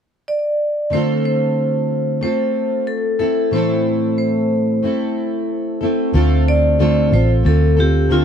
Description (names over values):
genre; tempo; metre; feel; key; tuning
acoustic pop; 92 BPM; 4/4; straight; D minor; A4 = 444 Hz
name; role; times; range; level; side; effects
vibraphone with hard mallets; melody; 0.3-8.2 s; F4 to D5; -20 LUFS; equal; slapback echo
fingerpicked plugged-in steel-string acoustic guitar; accompaniment; 0.9-8.2 s; A2 to A4; -18 LUFS; equal; double-tracked left and right
vintage muted fingered electric bass; bass; 6.1-8.2 s; A1 to D2; -15 LUFS; equal; none
room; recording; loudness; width
moderate booth ambience, RT60 0.2 s; dry, close 1970s-style studio recording; -15 LUFS; side -8 dB against mid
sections
0.9-6.1 A section; 6.1-8.2 B section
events
none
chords
0.0 N.C.; 0.9 Dm7; 3.2 Am; 6.1 Dm7